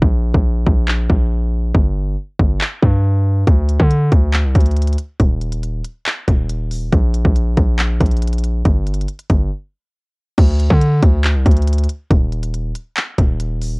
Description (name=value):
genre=hip hop, trap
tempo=139 BPM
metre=4/4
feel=half-time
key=unclear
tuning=A4 = 440 Hz
part: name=hard-hitting 808-style bass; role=bass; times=0.0-13.8 s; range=Eb1 to D3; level=-16 LUFS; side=equal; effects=transformer saturation
part: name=trap drum kit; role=drums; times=0.0-13.7 s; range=crash cymbal, handclaps, hi-hat, kick drum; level=-15 LUFS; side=equal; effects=cassette tape
room=little or no reverb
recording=home recording on cassette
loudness=-14 LUFS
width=side -34 dB against mid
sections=0.0-10.4 A section; 10.4-13.8 B section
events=break 0.0-3.5, 9.5-10.4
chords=none